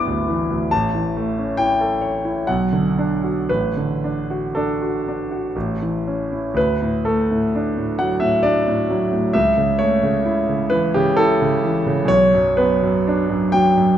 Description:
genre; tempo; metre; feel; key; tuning
classical, romantic nocturne for solo piano; 56-71 BPM; 3/4; rubato; D major; A4 = 443 Hz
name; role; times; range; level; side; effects
clear concert grand piano; solo; 0.0-14.0 s; G1 to D6; -17 LUFS; equal; none
room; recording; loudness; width
wet recital hall reverb, RT60 1.4 s; dark, warm production; -17 LUFS; side -10 dB against mid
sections
0.0-6.6 A section; 6.6-14.0 B section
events
none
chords
0.0 Em7/G; 0.7 A; 2.5 Bm; 3.5 D/A; 5.5 A; 6.6 D; 9.4 A/C#; 12.1 Bm

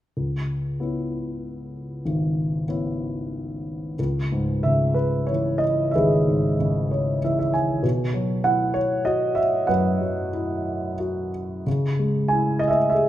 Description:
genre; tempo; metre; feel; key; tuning
classical, lyrical solo piano; 94 BPM; 3/4; uneven beats, rubato; C# minor; A4 = 440 Hz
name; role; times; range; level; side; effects
dark grand piano; solo; 0.2-13.1 s; G#1 to G#5; -21 LUFS; equal; none
room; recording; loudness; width
moderate recital hall reverb, RT60 1.5 s; minimal, uncompressed stereo recording; -21 LUFS; side -13 dB against mid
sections
0.2-4.0 A section; 4.0-13.1 B section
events
grand piano fill 6.6-7.8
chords
0.2 C#m7; 7.8 Bsus4; 11.7 C#m

